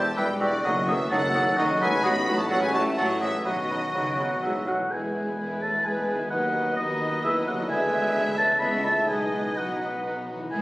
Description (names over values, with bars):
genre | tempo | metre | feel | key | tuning
classical, dramatic, fast romantic movement for symphony orchestra | 128 BPM | 3/4 | straight | E major | A4 = 439 Hz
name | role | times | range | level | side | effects
warm symphonic violin section | melody | 0.0-10.6 s | C#4 to B5 | -36 LUFS | left 1 dB | none
mellow clarinet | second line | 0.0-10.6 s | D#4 to B4 | -38 LUFS | equal | none
warm oboe | second line | 0.0-10.6 s | F#4 to B5 | -27 LUFS | equal | none
warm studio violin section | second line | 0.0-10.6 s | A3 to B5 | -37 LUFS | equal | none
clear bassoon | accompaniment | 0.0-4.8 s | F#3 to G3 | -29 LUFS | right 1 dB | none
dark trombone section | sustained chords | 0.0-10.6 s | D#3 to E4 | -40 LUFS | right 1 dB | none
mellow French horn section | sustained chords | 0.0-10.6 s | D3 to B3 | -34 LUFS | equal | none
concert harp | arpeggios | 0.0-10.6 s | E2 to F#5 | -36 LUFS | left 2 dB | none
warm trumpet | stabs | 0.0-10.6 s | F#4 to B4 | -35 LUFS | equal | none
clear symphonic double bass section | bass | 0.0-10.6 s | E1 to E2 | -38 LUFS | right 1 dB | none
warm studio cello section | bass | 0.0-10.6 s | E2 to B3 | -37 LUFS | equal | none
warm tuba | bass | 0.0-10.6 s | E1 to D#2 | -35 LUFS | right 1 dB | none
mellow hollow concert flute | second line | 0.2-10.6 s | F#4 to E6 | -37 LUFS | left 1 dB | none
warm studio viola section | accompaniment | 0.2-10.6 s | F#3 to E5 | -34 LUFS | equal | none
room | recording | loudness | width
wet scoring stage reverb, RT60 1.5 s | recorded on a phone in the room, club reverb | -22 LUFS | side -19 dB against mid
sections
0.0-4.9 A section; 4.9-10.6 B section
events
none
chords
0.0 Em; 0.6 D#dim/F#; 2.0 F#m/A; 3.5 B; 4.9 E; 6.3 B/D#; 7.7 E7/D; 8.6 A/C#; 9.1 B